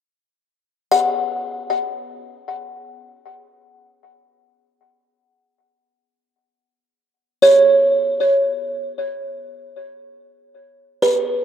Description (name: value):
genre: ambient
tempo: free time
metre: none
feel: none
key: unclear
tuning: A4 = 439 Hz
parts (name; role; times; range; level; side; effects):
- buzzing kalimba; solo; 0.9-11.4 s; B4 to F#5; -15 LUFS; right 1 dB; tape echo
room: wet spring reverb, RT60 2.6 s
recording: echo-heavy mix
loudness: -15 LUFS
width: side -9 dB against mid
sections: 0.0-11.4 A section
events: none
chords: none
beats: free time